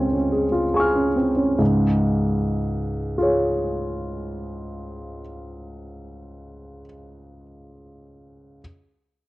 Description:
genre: neoclassical minimalist piano.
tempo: 74 BPM.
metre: 3/4.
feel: rubato.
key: Db major.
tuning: A4 = 441 Hz.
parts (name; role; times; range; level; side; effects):
warm grand piano; solo; 0.0-8.6 s; Db2 to F6; -21 LUFS; equal; none.
room: light reverb, small room ambience.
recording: home recording on cassette, nothing above 10.8 kHz.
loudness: -19 LUFS.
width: side -18 dB against mid.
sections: 0.0-1.6 A section; 1.6-6.4 B section.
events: slowing down 0.0-1.6.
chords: 0.0 Db.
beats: 0.75 | 1.59 2.39 3.19 | 3.98 4.79 5.60.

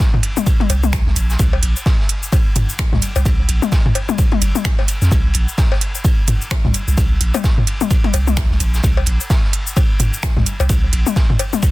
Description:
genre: minimal techno.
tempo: 129 BPM.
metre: 4/4.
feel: swing 59% on 16ths.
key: unclear.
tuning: A4 = 440 Hz.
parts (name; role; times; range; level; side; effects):
electronic kick drum; drums; 0.0-11.7 s; none; -16 LUFS; equal; none.
minimal click drum kit; drums; 0.0-11.7 s; cabasa, finger snaps, hi-hat; -23 LUFS; right 2 dB; soft clipping on snare.
raw garage drum kit; drums; 0.0-11.7 s; ride cymbal, snare drum; -28 LUFS; equal; sidechain pumping on cymbals, high-pass filter on cymbals, high-pass filter on snare, high-pass filter on room.
electronic toms and cowbell; percussion; 0.1-11.6 s; none; -20 LUFS; left 4 dB; ping-pong delay.
punchy sub bass; bass; 0.7-11.0 s; G1 to F2; -16 LUFS; equal; sidechain pumping.
room: little or no reverb.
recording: dense, heavily limited modern master.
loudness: -14 LUFS.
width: side -18 dB against mid.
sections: 0.0-11.7 A section.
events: none.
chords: none.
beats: 0.00 0.46 0.93 | 1.39 1.86 2.32 2.79 | 3.25 3.72 4.18 4.65 | 5.12 5.58 6.04 6.51 | 6.97 7.44 7.91 8.37 | 8.84 9.30 9.77 10.23 | 10.70 11.16 11.63.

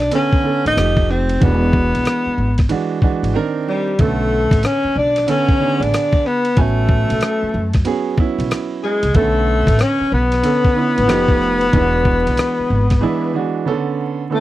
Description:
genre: hip hop, jazz-hop.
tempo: 93 BPM.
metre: 4/4.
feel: swing 64% on 16ths.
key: B dorian.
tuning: A4 = 438 Hz.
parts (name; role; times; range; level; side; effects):
breathy tenor saxophone; melody; 0.0-14.4 s; G3 to D#4; -18 LUFS; left 1 dB; none.
upright bass; bass; 0.0-13.0 s; E1 to F#2; -19 LUFS; equal; none.
dusty soul sampler-style drum kit; drums; 0.0-13.0 s; hi-hat, kick drum, ride cymbal, rim click; -17 LUFS; equal; none.
warm grand piano; accompaniment; 0.1-14.4 s; C#3 to G#5; -21 LUFS; right 5 dB; none.
growling tenor saxophone; second line; 3.7-14.4 s; A2 to D5; -26 LUFS; left 8 dB; none.
room: little or no reverb.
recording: dry, close 1970s-style studio recording, vinyl crackle.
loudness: -14 LUFS.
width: side -15 dB against mid.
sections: 0.0-14.3 A section.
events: drums muted 3.3-4.0; break 13.0-14.3.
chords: 0.0 Bm9; 0.8 F9; 1.4 E9; 3.3 Cm9; 4.0 Bm9; 6.6 Amaj13; 9.2 Bm9; 11.1 F9; 11.7 E9; 13.7 Bm9.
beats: 0.12 0.77 | 1.41 2.06 2.70 3.35 | 3.99 4.64 5.28 5.93 | 6.57 7.22 7.86 8.51 | 9.15 9.80 10.44 11.09 | 11.73 12.38 13.02 13.67 | 14.31.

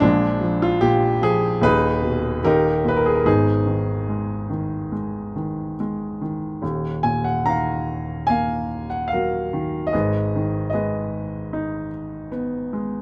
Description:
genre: classical, lyrical solo piano.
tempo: 73 BPM.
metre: 4/4.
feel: uneven beats, rubato.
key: G# minor, Eb minor from 6.6 s.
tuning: A4 = 440 Hz.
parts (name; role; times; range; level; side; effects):
warm grand piano; solo; 0.0-13.0 s; D#1 to Bb5; -22 LUFS; equal; none.
room: light reverb.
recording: close, detailed microphones.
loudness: -22 LUFS.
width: mono.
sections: 0.0-6.6 A section; 6.6-13.0 B section.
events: none.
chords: 0.0 A#5; 1.6 G#m/D#; 2.4 D#; 3.3 G#m; 6.6 Ebmadd9; 9.9 Abm.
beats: | 0.02 0.83 1.64 2.45 | 3.26 4.09 4.93 5.78 | 6.62 7.47 8.31 9.13 | 9.93 10.73 11.52 12.32.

